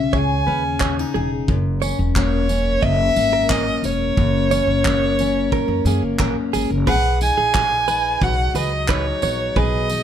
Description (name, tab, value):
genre	acoustic pop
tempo	89 BPM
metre	4/4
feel	straight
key	B major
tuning	A4 = 442 Hz
part	dark violin	melody	0.0-10.0 s	C#5 to G#5	-21 LUFS	right 1 dB	plate reverb
part	picked steel-string acoustic guitar	accompaniment	0.0-10.0 s	F#2 to A#4	-22 LUFS	left 4 dB	none
part	upright bass	bass	0.0-10.0 s	E1 to F#2	-22 LUFS	right 1 dB	none
part	direct-recorded clean electric guitar	arpeggios	0.1-9.9 s	G#4 to D#5	-26 LUFS	right 12 dB	none
part	soft brush drum kit	drums	0.1-10.0 s	crash cymbal, handclaps, kick drum, tambourine	-24 LUFS	right 1 dB	none
room	light reverb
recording	none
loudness	-16 LUFS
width	side -9 dB against mid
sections	0.0-6.9 A section; 6.9-10.0 B section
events	none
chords	0.0 C#madd9; 1.5 F#; 6.9 B6